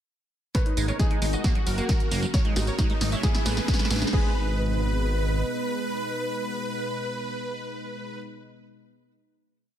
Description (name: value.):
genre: uplifting trance.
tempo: 134 BPM.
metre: 4/4.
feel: straight.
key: G# minor.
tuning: A4 = 441 Hz.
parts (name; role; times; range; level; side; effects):
dense compressed supersaw; melody; 0.5-8.2 s; D#4 to E5; -32 LUFS; equal; sidechain pumping, low-pass filter, ping-pong delay.
felt-muted upright piano; second line; 0.5-8.2 s; F#4 to B4; -38 LUFS; equal; ping-pong delay.
wide unison pluck; second line; 0.5-8.2 s; D#4 to E5; -39 LUFS; left 1 dB; none.
lush unison pad; sustained chords; 0.5-8.2 s; B2 to F#4; -35 LUFS; equal; chorus, sidechain pumping.
liquid acid bass; arpeggios; 0.5-4.3 s; F#3 to A#3; -34 LUFS; right 5 dB; chorus, sidechain pumping, ping-pong delay.
electronic kick drum; drums; 0.5-4.2 s; none; -24 LUFS; equal; none.
punchy analog drum machine; drums; 0.5-4.2 s; crash cymbal, hi-hat, snare drum, tambourine; -30 LUFS; equal; none.
riser; sound effects; 2.1-4.1 s; none; -37 LUFS; equal; none.
fat analog bass; bass; 0.8-5.4 s; F#1 to A1; -26 LUFS; equal; sidechain pumping.
room: digital ambience.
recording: none.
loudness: -23 LUFS.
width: side -10 dB against mid.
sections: 0.5-4.1 build; 4.1-7.7 final chord.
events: build-up 0.5-4.1; drum fill 0.5-4.1; filter sweep on supersaw synth 0.5-4.1.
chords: 0.5 G#madd9; 1.4 F#; 2.3 G#madd9; 3.2 Aadd9; 4.1 G#m.